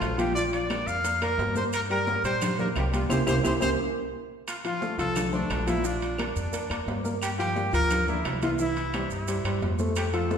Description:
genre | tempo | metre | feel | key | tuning
latin, salsa | 175 BPM | 4/4 | straight | F major | A4 = 440 Hz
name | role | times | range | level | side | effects
clear trumpet | melody | 0.0-10.4 s | D4 to F5 | -30 LUFS | equal | none
warm upright piano | accompaniment | 0.0-10.4 s | E3 to G5 | -30 LUFS | equal | none
upright bass | bass | 0.0-10.4 s | Bb1 to Bb2 | -31 LUFS | equal | none
claves | percussion | 0.0-10.1 s | none | -42 LUFS | left 3 dB | none
congas | percussion | 0.0-10.4 s | none | -34 LUFS | left 2 dB | none
maracas | percussion | 0.0-10.4 s | none | -42 LUFS | right 7 dB | none
timbales | percussion | 0.0-10.4 s | none | -36 LUFS | right 5 dB | none
room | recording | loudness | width
wet scoring stage reverb, RT60 1.6 s | recorded in a church or concert hall | -24 LUFS | side -7 dB against mid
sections
0.0-4.5 A section; 4.5-10.4 A section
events
band accent 3.1-4.5; drum fill 3.4-4.5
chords
0.4 Bb; 1.7 Gm; 3.1 C; 4.5 F6; 5.8 Bb; 7.2 Gm7; 8.6 C

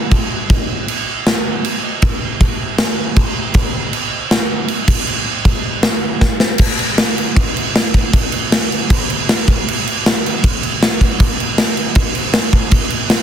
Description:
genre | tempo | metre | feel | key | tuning
punk | 157 BPM | 4/4 | straight | none | none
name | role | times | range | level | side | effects
big rock drum kit | drums | 0.1-13.2 s | crash cymbal, kick drum, snare drum | -13 LUFS | equal | none
room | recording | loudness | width
little or no reverb | dense, heavily limited modern master | -13 LUFS | side -9 dB against mid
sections
0.0-6.6 A section; 6.6-13.2 B section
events
half time 0.0-6.6; drum fill 6.2-6.6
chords
none

